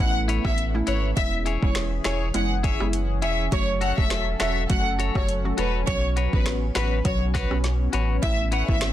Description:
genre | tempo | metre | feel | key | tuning
dancehall | 102 BPM | 4/4 | swing 56% on 16ths | A major | A4 = 440 Hz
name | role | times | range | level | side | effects
warm studio violin section | melody | 0.0-8.9 s | B4 to F#5 | -28 LUFS | equal | tape echo
hollow square pluck | accompaniment | 0.0-8.9 s | F#3 to F#4 | -31 LUFS | right 3 dB | chorus
warm analog pad | sustained chords | 0.0-8.9 s | E3 to A4 | -33 LUFS | left 1 dB | chorus, tremolo, sidechain pumping
warm sub bass | bass | 0.0-8.9 s | E1 to B1 | -26 LUFS | equal | none
clean electric guitar | arpeggios | 0.3-8.8 s | E4 to C#5 | -31 LUFS | left 7 dB | none
afro-pop drum kit | drums | 0.3-8.9 s | finger snaps, hi-hat, kick drum, rim click, snare drum | -26 LUFS | equal | vintage 12-bit sampler grit
room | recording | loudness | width
little or no reverb | dense, heavily limited modern master | -21 LUFS | side -12 dB against mid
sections
0.0-8.9 A section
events
none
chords
0.0 Aadd9; 1.2 E6; 3.5 F#m; 5.9 Bsus2; 8.2 Aadd9

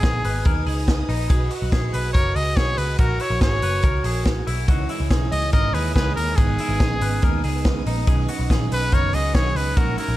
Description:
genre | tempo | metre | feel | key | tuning
jangly indie pop | 142 BPM | 4/4 | straight | B major | A4 = 440 Hz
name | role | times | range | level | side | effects
bright trumpet | melody | 0.0-10.2 s | G#4 to D#5 | -26 LUFS | equal | plate reverb, digital delay
vibraphone with hard mallets | second line | 0.0-10.2 s | B3 to F#4 | -32 LUFS | right 2 dB | none
string machine, violins | sustained chords | 0.0-10.2 s | A#4 to D#6 | -36 LUFS | right 1 dB | ensemble chorus, plate reverb
clean electric guitar | arpeggios | 0.0-10.2 s | D#4 to B4 | -31 LUFS | left 3 dB | plate reverb
vintage muted picked electric bass | bass | 0.0-10.2 s | F#1 to D#2 | -24 LUFS | equal | none
vintage drum kit | drums | 0.0-10.1 s | hi-hat, kick drum, ride cymbal, snare drum | -21 LUFS | equal | none
semi-hollow electric guitar | accompaniment | 4.7-10.2 s | G#2 to F#4 | -30 LUFS | right 8 dB | none
room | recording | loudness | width
light reverb | none | -18 LUFS | side -15 dB against mid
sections
0.0-10.2 A section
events
none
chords
0.0 G#m; 1.3 Badd9; 3.0 F#add9; 4.7 G#m; 8.1 Badd9

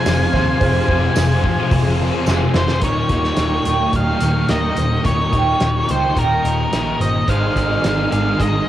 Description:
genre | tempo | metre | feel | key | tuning
rock, shoegaze and dream pop | 108 BPM | 4/4 | straight | Eb mixolydian | A4 = 440 Hz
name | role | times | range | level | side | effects
octave-fuzz lead guitar | melody | 0.0-8.7 s | Bb4 to Ab5 | -22 LUFS | left 1 dB | distortion, analog delay
ensemble organ-string | sustained chords | 0.0-8.7 s | Ab4 to Db6 | -27 LUFS | equal | ensemble chorus, cassette tape
fingerpicked twelve-string acoustic guitar | arpeggios | 0.0-8.7 s | G4 to C5 | -25 LUFS | right 6 dB | wide subtle chorus, cassette tape, analog delay
direct-recorded clean electric guitar | riff | 0.0-8.7 s | Eb2 to F4 | -27 LUFS | right 5 dB | reverse reverb, cassette tape
distorted electric guitar | riff | 0.0-8.7 s | Eb2 to Ab3 | -24 LUFS | equal | distortion, cassette tape
thick fuzz guitar | riff | 0.0-8.7 s | Eb2 to Ab3 | -22 LUFS | left 5 dB | distortion, ensemble chorus, cassette tape
vintage muted picked electric bass | bass | 0.1-8.6 s | Eb1 to Eb2 | -22 LUFS | equal | none
loose indie drum kit | drums | 0.1-8.5 s | hi-hat, kick drum, snare drum | -23 LUFS | equal | cassette tape
tambourine | percussion | 0.1-2.4 s | none | -34 LUFS | right 5 dB | none
room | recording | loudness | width
small room ambience | home recording on cassette | -15 LUFS | side -12 dB against mid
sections
0.0-2.8 A section; 2.8-8.7 B section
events
drum fill 2.3-2.8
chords
0.0 Fm; 2.8 Eb7; 7.3 Ab6

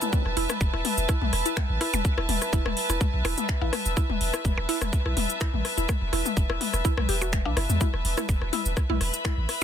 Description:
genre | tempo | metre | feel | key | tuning
minimal techno | 125 BPM | 4/4 | swing 53% on 16ths | unclear | A4 = 440 Hz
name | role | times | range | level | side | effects
mallet-like synth pluck | riff | 0.0-9.3 s | D4 to G4 | -34 LUFS | right 1 dB | chorus, vintage 12-bit sampler grit, sidechain pumping, ping-pong delay
booming analog drum machine | drums | 0.0-9.6 s | finger snaps, hi-hat, shaker | -31 LUFS | right 1 dB | overdrive, soft clipping on snare
minimal click drum kit | percussion | 0.0-9.6 s | percussion blips, rim click, toms | -32 LUFS | left 9 dB | soft clipping on snare, dub echo
warm chamber string section | texture | 0.0-9.6 s | B4 to B5 | -30 LUFS | right 1 dB | sidechain pumping
electronic kick drum | drums | 0.1-9.3 s | none | -25 LUFS | equal | none
punchy sub bass | bass | 0.3-9.5 s | E1 to E2 | -28 LUFS | equal | sidechain pumping
room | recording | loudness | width
little or no reverb | dense, heavily limited modern master | -23 LUFS | side -9 dB against mid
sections
0.0-9.6 A section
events
none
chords
0.0 Esus4

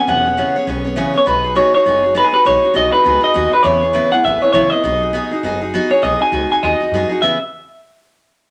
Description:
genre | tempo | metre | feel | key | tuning
rockabilly | 202 BPM | 4/4 | swing 59% on 8ths | E major | A4 = 441 Hz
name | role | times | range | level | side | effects
electric guitar through a small old amp | melody | 0.0-7.4 s | G#4 to G#5 | -16 LUFS | equal | spring reverb
picked steel-string acoustic guitar | accompaniment | 0.0-7.4 s | C#3 to C#5 | -22 LUFS | equal | none
upright bass | bass | 0.1-7.4 s | E1 to F#2 | -29 LUFS | equal | none
room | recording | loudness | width
moderate studio reverb, RT60 0.8 s | none | -15 LUFS | mono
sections
0.0-6.0 A section; 6.0-7.2 B section; 7.2-8.4 C section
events
none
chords
0.0 E6; 1.3 B6; 3.6 E6; 4.8 B6; 7.2 E6

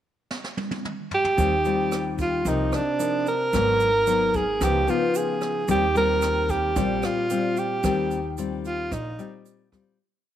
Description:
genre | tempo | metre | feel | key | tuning
bossa nova | 112 BPM | 4/4 | straight | Eb major | A4 = 440 Hz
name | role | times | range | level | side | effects
jazz brush drum kit | drums | 0.3-9.9 s | hi-hat, kick drum, rim click, snare drum, toms | -33 LUFS | right 2 dB | none
breathy alto saxophone | melody | 1.1-9.5 s | D4 to Bb4 | -23 LUFS | right 2 dB | none
nylon-string guitar | accompaniment | 1.4-10.0 s | Ab2 to F4 | -27 LUFS | left 6 dB | none
upright bass | bass | 1.4-9.2 s | Ab1 to Eb2 | -30 LUFS | right 2 dB | none
egg shaker | percussion | 1.4-10.0 s | none | -41 LUFS | right 15 dB | none
room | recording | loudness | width
moderate plate reverb, RT60 2.2 s | 1960s-style stereo with parts hard left and right | -21 LUFS | side -11 dB against mid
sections
0.0-1.4 pickup bar; 1.4-10.0 A section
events
drum fill 0.3-1.4; fade-out 7.8-10.0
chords
0.0 N.C.; 1.4 Eb69; 2.5 Cm11; 3.5 Abm7; 4.6 Db9; 5.7 Eb69

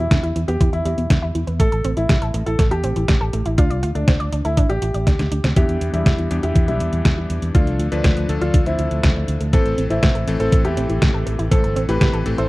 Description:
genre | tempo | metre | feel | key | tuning
italo disco | 121 BPM | 4/4 | straight | A minor | A4 = 440 Hz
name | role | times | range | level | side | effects
warm baby grand piano | melody | 0.0-12.5 s | F3 to C5 | -24 LUFS | equal | tape echo
analog pluck | arpeggios | 0.0-12.5 s | B2 to D5 | -28 LUFS | right 2 dB | chorus, tape echo
fingered electric bass | bass | 0.0-12.5 s | G1 to E2 | -22 LUFS | equal | none
detuned 8-bit digital drum machine | drums | 0.1-12.5 s | hi-hat, snare drum | -22 LUFS | equal | none
electronic kick drum | drums | 0.1-12.1 s | none | -17 LUFS | equal | none
bright electric grand piano | stabs | 5.6-12.5 s | E3 to B4 | -26 LUFS | left 3 dB | low-pass filter
room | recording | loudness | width
little or no reverb | dry, close 1970s-style studio recording | -16 LUFS | side -20 dB against mid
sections
0.0-5.6 A section; 5.6-12.5 B section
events
drum fill 5.1-5.6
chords
0.0 E5; 1.6 Am; 3.6 Dm7; 5.6 Em7; 7.5 Dm; 9.5 Am

